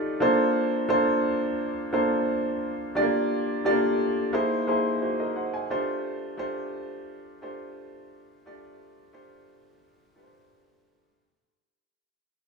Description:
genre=soul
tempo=87 BPM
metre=4/4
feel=straight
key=F major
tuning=A4 = 440 Hz
part: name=warm grand piano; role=solo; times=0.0-11.2 s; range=A3 to G#5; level=-24 LUFS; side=equal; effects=tape echo
room=light reverb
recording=small room ambience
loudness=-23 LUFS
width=side -4 dB against mid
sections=0.0-11.2 A section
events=fade-out 0.0-11.2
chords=0.2 Bbmaj9; 3.0 Gm7; 4.3 C7alt; 5.7 F69

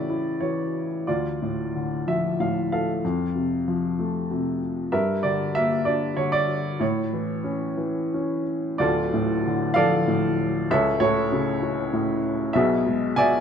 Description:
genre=classical, lyrical solo piano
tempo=88-99 BPM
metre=3/4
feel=rubato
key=D harmonic minor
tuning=A4 = 439 Hz
part: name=clear upright piano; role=solo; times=0.0-13.4 s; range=D1 to G#5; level=-22 LUFS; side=equal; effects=none
room=moderate recital hall reverb, RT60 1.5 s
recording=dark, warm production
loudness=-22 LUFS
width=side -7 dB against mid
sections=0.0-8.8 A section; 8.8-13.4 A section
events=none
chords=0.0 A; 1.1 Dm; 3.0 F; 4.9 Gm; 6.8 A; 8.8 Dm; 10.7 A/C#; 12.5 E7/B

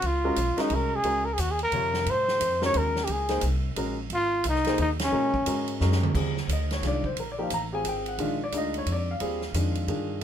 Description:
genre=modal jazz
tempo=177 BPM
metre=3/4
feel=swing 62% on 8ths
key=Db major, Eb major from 6.1 s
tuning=A4 = 438 Hz
part: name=breathy trumpet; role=melody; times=0.0-5.8 s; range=Db4 to Db5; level=-25 LUFS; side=equal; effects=none
part: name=upright bass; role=bass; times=0.0-10.2 s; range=Ab1 to Bb2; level=-29 LUFS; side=equal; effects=none
part: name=swinging big-band drum kit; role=drums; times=0.0-10.2 s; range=crash cymbal, hi-hat, kick drum, ride cymbal, snare drum, toms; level=-34 LUFS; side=right 3 dB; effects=none
part: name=warm grand piano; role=accompaniment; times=0.2-10.2 s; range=C3 to Bb5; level=-30 LUFS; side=left 1 dB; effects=none
room=moderate studio reverb, RT60 0.6 s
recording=minimal, uncompressed stereo recording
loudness=-24 LUFS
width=side -9 dB against mid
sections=0.0-6.1 A section; 6.1-10.2 B section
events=band accent 5.0; drum fill 5.8-6.1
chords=0.0 Dbmaj9; 5.1 Gbadd9; 6.1 Ebmaj9

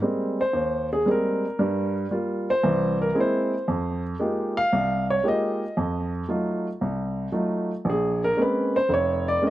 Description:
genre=solo jazz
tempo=115 BPM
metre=4/4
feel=swing 69% on 8ths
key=unclear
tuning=A4 = 440 Hz
part: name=warm upright piano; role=solo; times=0.0-9.5 s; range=F1 to F5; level=-22 LUFS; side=equal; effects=slapback echo
room=little or no reverb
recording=recorded outdoors, with no room sound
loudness=-22 LUFS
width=side -14 dB against mid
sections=0.0-9.5 A section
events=upright piano solo 0.0-9.5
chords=0.0 Abmaj9; 1.6 Gm7; 2.6 C7b13; 3.7 Fm11; 5.8 F7b9; 7.9 Bbm9

